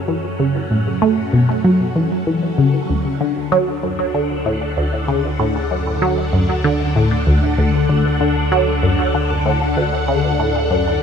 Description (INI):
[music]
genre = ambient, sequencer-driven space music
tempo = 96 BPM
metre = 4/4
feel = straight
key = unclear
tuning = A4 = 440 Hz
[part]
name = phased string machine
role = sustained chords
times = 0.0-11.0 s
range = D3 to F#5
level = -21 LUFS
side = left 1 dB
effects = ensemble chorus, phaser
[part]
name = warm sub bass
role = bass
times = 0.0-11.0 s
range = D2 to F#2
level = -24 LUFS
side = left 1 dB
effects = none
[part]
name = resonant blip pluck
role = riff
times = 0.1-11.0 s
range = D2 to A3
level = -17 LUFS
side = equal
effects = phaser, analog delay
[sound]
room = moderate huge ambient reverb, RT60 8.1 s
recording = none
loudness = -15 LUFS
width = side -7 dB against mid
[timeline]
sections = 0.0-11.0 A section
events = fade-in on string machine 0.0-11.0; fade-in on sub bass 0.0-11.0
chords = 0.0 F#m; 2.9 D